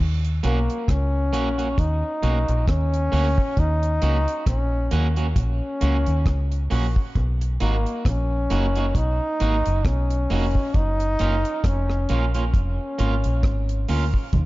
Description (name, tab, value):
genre	roots reggae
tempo	67 BPM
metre	4/4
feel	swing 57% on 16ths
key	Eb minor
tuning	A4 = 440 Hz
part	deep dub fingered electric bass	bass	0.0-14.5 s	F1 to Eb2	-22 LUFS	equal	none
part	deep reggae drum kit	drums	0.2-14.5 s	hi-hat, kick drum, rim click	-24 LUFS	equal	none
part	electric guitar at the edge of break-up	accompaniment	0.4-14.0 s	Bb3 to Gb4	-30 LUFS	right 4 dB	spring reverb, tape echo
part	clear trombone	melody	0.5-13.9 s	Bb3 to Eb4	-26 LUFS	left 1 dB	tape echo
part	congas	percussion	14.3-14.5 s	none	-24 LUFS	right 4 dB	none
room	studio reverb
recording	dark, warm production, nothing above 7.5 kHz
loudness	-20 LUFS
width	side -18 dB against mid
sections	0.0-14.5 A section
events	none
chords	0.0 Ebm7; 7.2 Bmaj7; 10.7 Gbmaj7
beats	0.88 1.78 2.67 | 3.57 4.47 5.36 6.26 | 7.16 8.05 8.95 9.85 | 10.74 11.64 12.54 13.44 | 14.33